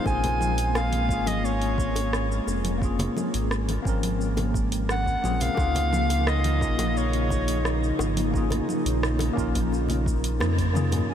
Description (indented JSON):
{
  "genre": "sunset chillout",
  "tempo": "87 BPM",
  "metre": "4/4",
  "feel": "straight",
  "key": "unclear",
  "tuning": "A4 = 443 Hz",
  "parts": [
    { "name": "warm soprano saxophone", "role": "melody", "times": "0.0-11.1 s", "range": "Db5 to Ab5", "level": "-30 LUFS", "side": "left 1 dB", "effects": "diffuse ambient delay" },
    { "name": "tine electric piano", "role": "accompaniment", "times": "0.0-11.1 s", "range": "Gb2 to Bb4", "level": "-30 LUFS", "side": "moving between left 3 dB and right 4 dB", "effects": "medium stereo tremolo, auto-pan, low-pass filter, diffuse ambient delay" },
    { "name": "airy breathy pad", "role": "sustained chords", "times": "0.0-11.1 s", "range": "Db3 to Ab4", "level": "-32 LUFS", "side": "equal", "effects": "chorus" },
    { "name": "round analog bass", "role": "bass", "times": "0.1-11.0 s", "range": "F1 to F2", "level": "-26 LUFS", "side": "equal", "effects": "none" },
    { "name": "electronic kick drum", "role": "drums", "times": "0.1-10.7 s", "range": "none", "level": "-29 LUFS", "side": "equal", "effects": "overdrive" },
    { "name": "smooth R&B drum kit", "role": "drums", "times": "0.1-11.1 s", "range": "congas, hi-hat, rim click, shaker, toms", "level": "-32 LUFS", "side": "equal", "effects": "overdrive, low-pass filter on perc, low-pass filter on snare, low-pass filter on hats, low-pass filter on toms, low-pass filter on room" },
    { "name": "bongos and congas", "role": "percussion", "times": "0.1-11.1 s", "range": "none", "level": "-37 LUFS", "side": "left 2 dB", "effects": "none" }
  ],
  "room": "moderate huge ambient reverb, RT60 7.4 s",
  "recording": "dreamy mix soaked in reverb",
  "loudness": "-22 LUFS",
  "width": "side -9 dB against mid",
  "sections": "0.0-11.1 A section",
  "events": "drum fill 10.4-11.1; band accent 10.4-10.7",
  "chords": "0.1 Bbm9; 5.6 Db69"
}